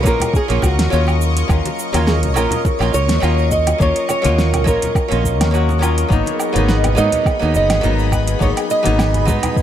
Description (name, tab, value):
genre	sunset chillout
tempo	104 BPM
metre	4/4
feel	swing 54% on 16ths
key	Eb minor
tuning	A4 = 440 Hz
part	nylon-string guitar	melody	0.0-9.6 s	Gb4 to Eb5	-21 LUFS	right 2 dB	ping-pong delay
part	archtop guitar, miked and amplified	accompaniment	0.0-9.6 s	Gb3 to Gb4	-21 LUFS	moving between left 5 dB and right 4 dB	auto-pan, digital delay
part	shimmering ambient pad	sustained chords	0.0-9.6 s	Ab4 to Db6	-25 LUFS	equal	chorus, built-in reverb, phaser
part	fretless electric bass	bass	0.0-9.4 s	Gb1 to Ab2	-17 LUFS	equal	tube saturation, lush chorus
part	electronic kick drum	drums	0.0-9.6 s	none	-18 LUFS	equal	overdrive
part	congas	percussion	0.0-9.5 s	none	-27 LUFS	left 2 dB	none
part	smooth R&B drum kit	drums	0.1-9.6 s	hi-hat, shaker, snare drum, woodblock	-23 LUFS	right 1 dB	overdrive
part	concert harp	arpeggios	6.1-9.6 s	Eb4 to Eb5	-27 LUFS	left 1 dB	digital delay
room	light reverb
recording	dark, warm production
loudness	-14 LUFS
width	side -10 dB against mid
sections	0.0-9.6 A section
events	none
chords	0.0 Ebm7; 6.1 Abm7